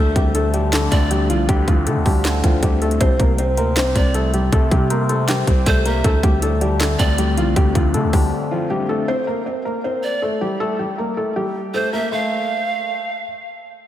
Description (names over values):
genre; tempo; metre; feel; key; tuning
hip hop, trap; 158 BPM; 4/4; half-time; unclear; A4 = 436 Hz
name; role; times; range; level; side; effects
felt-muted upright piano; melody; 0.0-13.2 s; F3 to C5; -22 LUFS; equal; low-pass filter, diffuse ambient delay
overdriven tine electric piano; accompaniment; 0.0-9.1 s; C3 to C5; -23 LUFS; left 3 dB; phaser
hard-hitting 808-style bass; bass; 0.0-8.3 s; C2 to D3; -20 LUFS; equal; none
trap drum kit; drums; 0.2-8.2 s; handclaps, hi-hat, kick drum, snare drum; -18 LUFS; equal; none
breathy bright pan flute; second line; 0.9-1.1, 4.0-7.2, 10.0-13.2 s; C5 to F5; -25 LUFS; right 3 dB; diffuse ambient delay
room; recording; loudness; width
moderate lush hall reverb, RT60 2.4 s; dreamy mix soaked in reverb; -16 LUFS; side -12 dB against mid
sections
0.0-9.1 A section; 9.1-12.1 B section; 12.1-13.9 C section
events
break 8.3-9.1; filter sweep on felt piano 9.1-12.1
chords
0.0 Dm7; 3.0 C5; 6.0 Dm7; 9.1 C5; 12.1 F/A